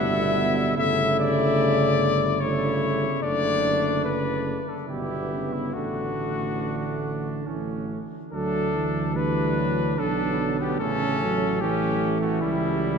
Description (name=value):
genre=classical, brass quintet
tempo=73 BPM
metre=3/4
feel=straight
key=D major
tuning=A4 = 439 Hz
part: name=mellow trumpet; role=melody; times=0.0-13.0 s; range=E4 to E5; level=-27 LUFS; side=left 6 dB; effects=none
part: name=warm trumpet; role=second line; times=0.0-13.0 s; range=G3 to E4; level=-32 LUFS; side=right 5 dB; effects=none
part: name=dark French horn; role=accompaniment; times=0.0-13.0 s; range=F#3 to B3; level=-30 LUFS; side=left 2 dB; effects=none
part: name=dark euphonium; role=accompaniment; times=0.0-13.0 s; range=B2 to F#3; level=-28 LUFS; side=right 4 dB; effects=none
part: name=mellow tuba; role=bass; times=0.0-13.0 s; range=F#1 to D2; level=-29 LUFS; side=right 3 dB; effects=none
room=wet cathedral reverb, RT60 4.5 s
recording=dark, warm production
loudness=-22 LUFS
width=side -6 dB against mid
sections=0.0-8.3 A section; 8.3-13.0 B section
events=none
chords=0.0 Em/G; 0.8 A7/G; 3.2 D/F#; 4.9 Em/G; 5.8 D/A; 7.5 A; 8.3 D; 10.8 A7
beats=| 0.78 1.60 2.42 | 3.24 4.06 4.90 | 5.75 6.62 7.47 | 8.33 9.16 9.98 | 10.80 11.61 12.42